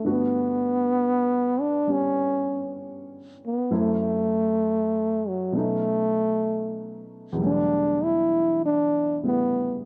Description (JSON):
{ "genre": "jazz ballad", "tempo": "65 BPM", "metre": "4/4", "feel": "swing 68% on 8ths", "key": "unclear", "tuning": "A4 = 440 Hz", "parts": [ { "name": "mellow trombone", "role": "melody", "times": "0.0-9.8 s", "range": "F#3 to E4", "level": "-25 LUFS", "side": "equal", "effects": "none" }, { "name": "warm upright piano", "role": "accompaniment", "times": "0.0-9.9 s", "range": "E2 to G4", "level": "-32 LUFS", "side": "equal", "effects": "none" } ], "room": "light reverb, studio ambience", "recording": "dry, close 1970s-style studio recording", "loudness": "-24 LUFS", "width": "mono", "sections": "0.0-9.9 A section", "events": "none", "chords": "0.0 Gmaj7; 3.7 F#m7b5; 5.5 B7; 7.4 Em11" }